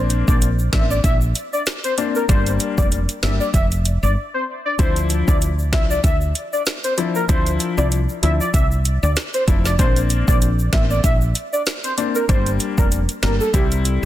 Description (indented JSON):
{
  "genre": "dancehall",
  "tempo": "96 BPM",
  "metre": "4/4",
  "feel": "swing 56% on 16ths",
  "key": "D minor",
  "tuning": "A4 = 439 Hz",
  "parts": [
    { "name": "warm baby grand piano", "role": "accompaniment", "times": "0.0-14.1 s", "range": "F3 to E4", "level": "-24 LUFS", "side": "left 6 dB", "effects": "none" },
    { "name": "woody fretless electric bass", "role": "bass", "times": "0.0-14.1 s", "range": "F1 to D2", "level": "-19 LUFS", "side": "equal", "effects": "none" },
    { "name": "afro-pop drum kit", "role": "drums", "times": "0.1-14.0 s", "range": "finger snaps, hi-hat, kick drum, snare drum", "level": "-19 LUFS", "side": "equal", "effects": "overdrive" },
    { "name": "egg shaker", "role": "percussion", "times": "0.1-14.0 s", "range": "none", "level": "-34 LUFS", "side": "equal", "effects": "none" },
    { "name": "warm velvety synth lead", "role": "melody", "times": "0.3-14.1 s", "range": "G4 to E5", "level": "-24 LUFS", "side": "equal", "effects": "chorus, digital delay" }
  ],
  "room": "light reverb",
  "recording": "dense, heavily limited modern master",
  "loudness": "-16 LUFS",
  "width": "side -13 dB against mid",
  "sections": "0.0-14.1 A section",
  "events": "break 4.2-4.8",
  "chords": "0.0 Bbadd9; 2.3 Gm; 4.8 Dmadd9; 9.8 Bbadd9; 12.3 Gm; 13.5 C"
}